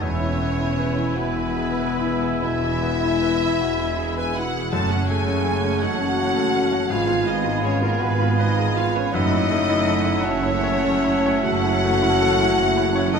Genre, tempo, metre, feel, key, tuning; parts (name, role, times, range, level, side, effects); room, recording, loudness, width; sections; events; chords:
classical; 45-57 BPM (dotted quarters); 12/8; rubato; A4 = 440 Hz
clear grand piano; melody; 0.0-13.2 s; E2 to C#5; -26 LUFS; left 2 dB
rich studio violin section; melody; 0.0-13.2 s; A#4 to A5; -30 LUFS; left 2 dB
clear oboe; second line; 0.0-13.2 s; F#5 to G#5; -33 LUFS; right 3 dB
mellow clarinet; second line; 0.0-13.2 s; C#5 to F5; -34 LUFS; right 1 dB
mellow hollow large flute ensemble; second line; 0.0-13.2 s; A5 to B5; -32 LUFS; right 1 dB
rich studio violin section; second line; 0.0-13.2 s; A#4 to A5; -32 LUFS; left 1 dB
warm French horn section; sustained chords; 0.0-13.2 s; A#3 to A4; -24 LUFS; left 4 dB
warm trombone section; sustained chords; 0.0-13.2 s; Ab2 to C#4; -34 LUFS; right 4 dB
warm trumpet section; stabs; 0.0-13.2 s; C#5 to F5; -33 LUFS; right 3 dB
dark tuba; bass; 0.0-13.2 s; E1 to Ab1; -32 LUFS; right 6 dB
rich studio cello section; bass; 0.0-13.2 s; E2 to Ab2; -30 LUFS; right 3 dB
rich studio double bass section; bass; 0.0-13.2 s; E1 to Ab1; -30 LUFS; right 5 dB
rich studio viola section; accompaniment; 0.4-13.2 s; G#3 to E4; -30 LUFS; right 4 dB
wet recital hall reverb, RT60 1.6 s; -18 LUFS; side -6 dB against mid
0.0-13.2 A section
0.0 E; 4.7 F#m; 6.9 Fdim/Ab; 9.1 F#m7